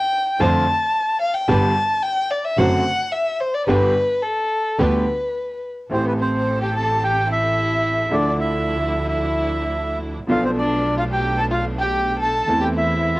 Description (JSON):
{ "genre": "tango", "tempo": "109 BPM", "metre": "4/4", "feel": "rubato", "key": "A minor from 5.9 s", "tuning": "A4 = 440 Hz", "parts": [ { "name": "dark violin", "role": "second line", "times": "0.0-13.2 s", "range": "B3 to A5", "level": "-22 LUFS", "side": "left 1 dB", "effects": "cassette tape" }, { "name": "clear concert grand piano", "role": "accompaniment", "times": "0.4-13.2 s", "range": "G1 to A4", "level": "-23 LUFS", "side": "right 1 dB", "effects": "cassette tape" }, { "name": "clear symphonic string section", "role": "stabs", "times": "0.4-13.2 s", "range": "F3 to C5", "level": "-30 LUFS", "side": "right 2 dB", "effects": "cassette tape" }, { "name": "rich double bass", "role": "bass", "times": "0.4-13.2 s", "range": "F#1 to F2", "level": "-25 LUFS", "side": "right 1 dB", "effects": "none" }, { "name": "bandoneon", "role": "melody", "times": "5.9-13.2 s", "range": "B4 to A5", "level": "-22 LUFS", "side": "right 1 dB", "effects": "cassette tape" } ], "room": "moderate studio ambience, RT60 0.5 s", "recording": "home recording on cassette", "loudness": "-18 LUFS", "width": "side -20 dB against mid", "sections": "0.0-5.9 A section; 5.9-13.2 B section", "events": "violin solo 0.0-5.9", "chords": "0.4 Dm7/F; 1.5 G; 2.6 D7/F#; 3.7 G; 5.9 Am7; 8.1 Dmadd9; 10.3 Bm7b5; 12.5 Am/E", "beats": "0.40 0.94 | 1.49 2.03 2.58 3.13 | 3.68 4.23 4.79 5.35 | 5.91 6.46 7.01 7.56 | 8.11 8.65 9.20 9.74 | 10.29 10.83 11.38 11.93 | 12.48 13.03" }